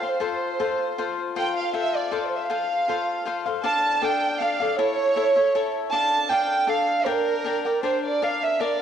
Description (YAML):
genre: mexican folk, mariachi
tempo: 158 BPM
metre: 3/4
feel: straight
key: F major, D minor from 3.6 s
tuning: A4 = 441 Hz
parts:
  - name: warm chamber violin section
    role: melody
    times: 0.0-8.8 s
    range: Bb4 to A5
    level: -23 LUFS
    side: right 4 dB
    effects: cassette tape
  - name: cavaquinho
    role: accompaniment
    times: 0.0-8.8 s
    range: D4 to G5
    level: -26 LUFS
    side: left 8 dB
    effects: cassette tape
room: wet lush hall reverb, RT60 2.4 s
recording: home recording on cassette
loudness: -21 LUFS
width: side -8 dB against mid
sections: 0.0-3.6 A section; 3.6-8.8 B section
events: none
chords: 0.0 F; 3.6 Dm; 4.8 A; 5.9 Dm; 7.1 Gm; 8.2 Bb